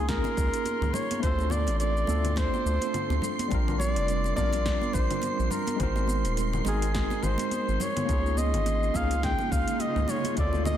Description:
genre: sunset chillout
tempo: 105 BPM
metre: 4/4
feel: swing 57% on 16ths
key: unclear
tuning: A4 = 439 Hz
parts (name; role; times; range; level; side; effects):
- warm flugelhorn; melody; 0.0-10.8 s; Ab4 to G5; -31 LUFS; right 1 dB; ping-pong delay, shimmer reverb
- tine electric piano; accompaniment; 0.0-10.8 s; D3 to Bb4; -32 LUFS; moving between left 3 dB and right 3 dB; medium stereo tremolo, auto-pan, shimmer reverb
- round analog bass; bass; 0.0-10.8 s; Eb1 to D2; -28 LUFS; equal; none
- wind-like tuned noise texture; texture; 0.0-10.8 s; C6 to C7; -38 LUFS; right 2 dB; built-in reverb, shimmer reverb
- deep house drum kit; drums; 0.1-10.8 s; congas, hi-hat, shaker, snare drum; -36 LUFS; left 2 dB; overdrive
- electronic kick drum; drums; 0.1-10.5 s; none; -32 LUFS; equal; overdrive
- congas; percussion; 0.2-10.8 s; none; -37 LUFS; right 1 dB; none
- shimmering ambient pad; sustained chords; 9.4-10.8 s; Db3 to F4; -36 LUFS; right 1 dB; chorus, built-in reverb, shimmer reverb
room: light reverb, digital ambience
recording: dense, heavily limited modern master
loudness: -24 LUFS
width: side -10 dB against mid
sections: 0.0-10.8 A section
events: none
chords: 0.0 Db69; 1.2 Dm7; 3.5 Bb6; 5.8 Ab7; 8.1 Db69

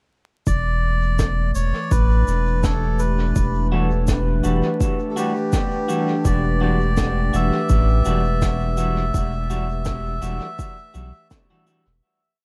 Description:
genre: ambient dub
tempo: 83 BPM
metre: 4/4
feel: swing 55% on 16ths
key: E minor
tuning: A4 = 440 Hz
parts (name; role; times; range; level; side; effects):
- melodica; melody; 0.5-11.3 s; G4 to E5; -30 LUFS; equal; dub echo
- warbly tape-like pad; sustained chords; 0.5-12.0 s; E3 to B4; -28 LUFS; equal; chorus, built-in reverb
- soft dub sub bass; bass; 0.5-12.0 s; E1 to B1; -23 LUFS; equal; none
- electronic kick drum; drums; 0.5-11.5 s; none; -25 LUFS; equal; overdrive
- shaker and snare drum; drums; 0.5-11.8 s; none; -35 LUFS; equal; dub echo
- semi-hollow electric guitar; stabs; 3.7-11.8 s; E3 to F#4; -30 LUFS; equal; vintage 12-bit sampler grit, dub echo
room: light reverb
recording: echo-heavy mix, vinyl crackle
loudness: -21 LUFS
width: mono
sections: 0.5-12.0 groove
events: fade-out 8.2-12.0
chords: 0.5 Em9

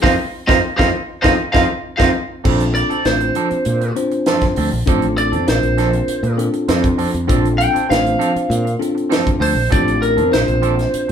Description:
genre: electric jazz fusion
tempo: 99 BPM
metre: 4/4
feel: straight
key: Bb major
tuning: A4 = 439 Hz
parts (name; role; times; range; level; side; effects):
- lightly driven lead guitar; melody; 0.0-11.1 s; Bb4 to G5; -19 LUFS; right 2 dB; none
- bell-like tine electric piano; accompaniment; 0.0-11.1 s; C4 to C5; -21 LUFS; left 3 dB; none
- semi-hollow electric guitar; stabs; 0.0-11.1 s; F3 to A4; -23 LUFS; right 5 dB; none
- fretless electric bass; bass; 0.0-11.1 s; A1 to Bb2; -20 LUFS; equal; none
- crisp fusion drum kit; drums; 0.0-11.1 s; crash cymbal, hi-hat, kick drum, snare drum; -20 LUFS; equal; none
- vintage hollow-body jazz guitar; second line; 0.1-2.1 s; C4 to F4; -22 LUFS; right 1 dB; none
room: wet large studio reverb, RT60 0.8 s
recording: band playing live in one room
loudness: -14 LUFS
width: side -8 dB against mid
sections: 0.0-2.5 A section; 2.5-11.1 B section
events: band accent 0.0-2.5; drum fill 1.8-2.5; lead electric guitar solo 2.5-11.1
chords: 0.0 F7; 2.5 Bbmaj9

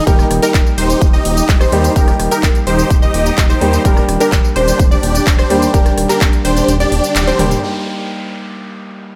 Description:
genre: EDM, festival progressive house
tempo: 127 BPM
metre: 4/4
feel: straight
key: Eb major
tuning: A4 = 440 Hz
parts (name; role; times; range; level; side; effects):
- unison pluck; arpeggios; 0.0-7.6 s; Bb4 to Eb5; -24 LUFS; equal; sidechain pumping, tape echo
- dense compressed supersaw; riff; 0.0-7.6 s; D4 to Eb5; -20 LUFS; equal; sidechain pumping, tape echo
- warm grand piano; accompaniment; 0.1-9.2 s; G3 to G4; -22 LUFS; equal; vintage 12-bit sampler grit, sidechain pumping
- detuned saw bass; bass; 0.1-7.6 s; Eb1 to Eb2; -20 LUFS; equal; chorus, sidechain pumping
- big-room dance drum kit; drums; 0.1-9.1 s; crash cymbal, handclaps, hi-hat, rim click, tambourine, toms; -24 LUFS; equal; low-pass filter on hats, small room ambience, low-pass filter on perc, low-pass filter on snare, low-pass filter on toms, low-pass filter on cymbals
- electronic kick drum; drums; 0.1-6.3 s; none; -14 LUFS; equal; small room ambience
- downlifter; sound effects; 7.6-9.2 s; none; -31 LUFS; equal; none
room: little or no reverb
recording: none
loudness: -13 LUFS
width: mono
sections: 0.0-7.6 A section; 7.6-9.2 B section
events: drop 0.0-7.6; kick drops out 6.7-7.6; band accent 7.2; drum fill 7.3-7.6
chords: 0.1 Eb; 3.9 Gm/Eb; 7.6 Eb

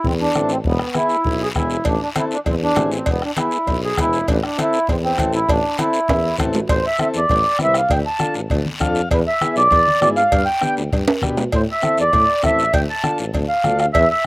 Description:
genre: latin, cumbia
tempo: 198 BPM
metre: 4/4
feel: straight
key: A harmonic minor, A minor from 6.7 s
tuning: A4 = 440 Hz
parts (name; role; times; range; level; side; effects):
- mellow accordion; melody; 0.0-14.2 s; B3 to A5; -18 LUFS; right 1 dB; none
- warm tuba; bass; 0.0-14.1 s; E1 to B2; -22 LUFS; equal; none
- bombo; percussion; 0.0-14.1 s; none; -23 LUFS; left 1 dB; none
- guiro; percussion; 0.0-14.3 s; none; -32 LUFS; left 2 dB; none
- congas; percussion; 0.1-13.8 s; none; -28 LUFS; left 1 dB; none
- overdriven combo organ; accompaniment; 0.4-13.9 s; B3 to F5; -25 LUFS; left 2 dB; slapback echo
- cowbell and timbales; percussion; 1.8-14.1 s; none; -24 LUFS; right 2 dB; none
room: little or no reverb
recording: recorded outdoors, with no room sound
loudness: -15 LUFS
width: side -23 dB against mid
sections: 0.0-6.7 A section; 6.7-14.3 B section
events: drum fill 6.1-6.7, 11.1-11.5; transistor combo organ fill 8.7-9.1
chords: 0.0 Am; 0.6 E; 1.9 Am; 3.1 E; 4.3 Am; 7.9 Dm; 9.1 E7; 10.3 G; 11.5 Am; 12.7 Dm

